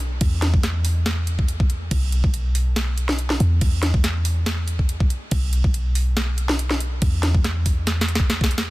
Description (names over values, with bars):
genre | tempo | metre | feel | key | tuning
future bass | 141 BPM | 4/4 | swing 53% on 16ths, half-time | unclear | A4 = 443 Hz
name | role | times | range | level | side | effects
warm 808-style bass | bass | 0.0-8.7 s | B1 to E2 | -21 LUFS | equal | tube saturation, sidechain pumping
trap drum kit | drums | 0.0-8.7 s | crash cymbal, hi-hat, snare drum | -25 LUFS | equal | studio ambience
electronic kick drum | drums | 0.2-8.5 s | none | -20 LUFS | equal | studio ambience
room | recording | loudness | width
little or no reverb | dense, heavily limited modern master | -18 LUFS | side -19 dB against mid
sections
0.0-8.7 A section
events
drop 0.0-8.7; drum fill 7.9-8.7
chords
none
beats
| 0.21 0.64 1.06 1.49 | 1.91 2.34 2.76 3.19 | 3.61 4.04 4.46 4.89 | 5.32 5.74 6.17 6.59 | 7.02 7.44 7.87 8.29